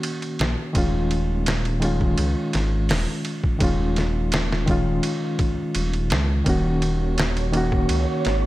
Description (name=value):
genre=trip hop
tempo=84 BPM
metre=4/4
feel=straight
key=unclear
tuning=A4 = 443 Hz
part: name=reed electric piano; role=accompaniment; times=0.0-8.5 s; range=Eb3 to Gb4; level=-24 LUFS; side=equal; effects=tremolo, low-pass filter, tape echo
part: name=trip hop sampler-style drum kit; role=drums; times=0.0-8.4 s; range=hi-hat, kick drum, ride cymbal, snare drum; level=-25 LUFS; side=equal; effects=none
part: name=dark detuned saw bass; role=bass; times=0.4-8.5 s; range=Eb1 to Db2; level=-23 LUFS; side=equal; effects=none
part: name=wind-like tuned noise texture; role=texture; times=7.0-8.5 s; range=Db5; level=-30 LUFS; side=right 6 dB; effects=built-in reverb
room=digital ambience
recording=none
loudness=-20 LUFS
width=side -16 dB against mid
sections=0.0-8.5 A section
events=none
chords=0.0 Ebm7; 0.7 Dbadd9/Eb; 6.5 Ebm7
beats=0.03 | 0.75 1.46 2.18 2.89 | 3.60 4.32 5.03 5.75 | 6.46 7.18 7.89